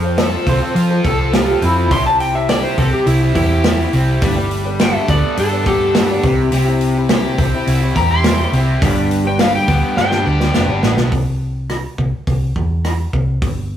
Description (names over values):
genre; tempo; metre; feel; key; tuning
folk rock and heartland rock; 104 BPM; 4/4; straight; C major; A4 = 440 Hz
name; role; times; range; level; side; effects
electric slide guitar; melody; 0.0-10.2 s; E4 to C6; -19 LUFS; left 1 dB; none
picked twelve-string acoustic guitar; accompaniment; 0.0-11.1 s; G2 to A4; -23 LUFS; left 1 dB; none
crunchy overdriven guitar; riff; 0.0-11.1 s; G2 to A4; -21 LUFS; equal; none
hollow-body short-scale picked electric bass; bass; 0.0-13.8 s; F1 to F3; -18 LUFS; equal; none
natural country drum kit; drums; 0.2-13.6 s; hi-hat, kick drum, rim click, snare drum; -19 LUFS; equal; none
electric guitar through a small old amp; second line; 0.5-1.9 s; E4 to C5; -20 LUFS; right 2 dB; tremolo
tambourine; percussion; 2.5-10.7 s; none; -39 LUFS; right 5 dB; none
room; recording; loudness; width
moderate stone room reverb, RT60 1.4 s; rough rehearsal-room recording; -13 LUFS; side -10 dB against mid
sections
0.0-11.1 A section; 11.1-13.8 B section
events
electric slide guitar solo 0.0-11.1; drum fill 10.0-11.1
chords
0.0 F; 1.9 C; 4.2 Gadd9; 6.2 C; 8.8 G; 11.1 C